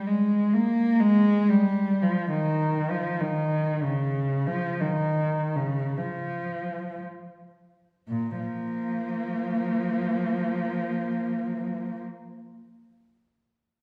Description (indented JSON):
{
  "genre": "classical, free, expressive piece for unaccompanied cello",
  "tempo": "24-64 BPM",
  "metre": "3/4",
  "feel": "rubato",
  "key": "Bb dorian",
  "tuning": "A4 = 438 Hz",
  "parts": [
    { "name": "dark cello", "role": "solo", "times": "0.0-12.0 s", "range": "Bb2 to Bb3", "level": "-26 LUFS", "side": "equal", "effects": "none" }
  ],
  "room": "wet recital hall reverb, RT60 1.6 s",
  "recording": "recorded in a church or concert hall",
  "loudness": "-26 LUFS",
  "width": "mono",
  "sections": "0.0-8.1 A section; 8.1-13.4 B section",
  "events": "slowing down 0.0-8.1",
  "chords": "none",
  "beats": "| 0.04 0.98 2.01 | 3.19 4.45 5.96 | 8.09 9.93 11.73"
}